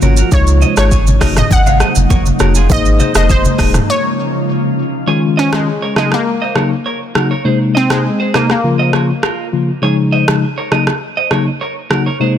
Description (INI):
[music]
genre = afrobeats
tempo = 101 BPM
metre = 4/4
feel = straight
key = unclear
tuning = A4 = 439 Hz
[part]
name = mellow tine electric piano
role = accompaniment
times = 0.0-12.4 s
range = C3 to Db5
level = -16 LUFS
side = left 3 dB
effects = fast stereo tremolo
[part]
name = glassy FM pad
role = sustained chords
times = 0.0-5.1 s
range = C3 to F4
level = -20 LUFS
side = equal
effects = ensemble chorus, built-in reverb
[part]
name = clean electric guitar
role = riff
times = 0.0-12.3 s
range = F4 to F5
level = -20 LUFS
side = right 5 dB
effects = tape echo
[part]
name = warm sub bass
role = bass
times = 0.0-3.8 s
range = Eb1 to Db2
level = -13 LUFS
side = equal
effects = none
[part]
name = deep house drum kit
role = drums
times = 0.0-12.0 s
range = hi-hat, kick drum, rim click, shaker, toms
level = -16 LUFS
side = equal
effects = soft clipping on snare
[part]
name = congas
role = percussion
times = 0.0-3.6 s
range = none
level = -20 LUFS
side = right 2 dB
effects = none
[part]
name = analog pluck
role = melody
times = 0.3-9.5 s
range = Ab3 to Gb5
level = -18 LUFS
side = left 1 dB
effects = chorus, tape echo
[sound]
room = light reverb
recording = dense, heavily limited modern master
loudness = -11 LUFS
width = side -10 dB against mid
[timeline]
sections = 0.0-5.1 A section; 5.1-12.4 B section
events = break 3.9-5.1, 5.1-12.4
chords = 0.3 Dbadd9; 1.2 Gb6; 2.7 Abadd9; 3.9 Bbm; 5.1 Dbadd9; 6.0 Gb6; 7.4 Abadd9; 8.6 Bbm; 9.8 Dbadd9; 10.7 Gb6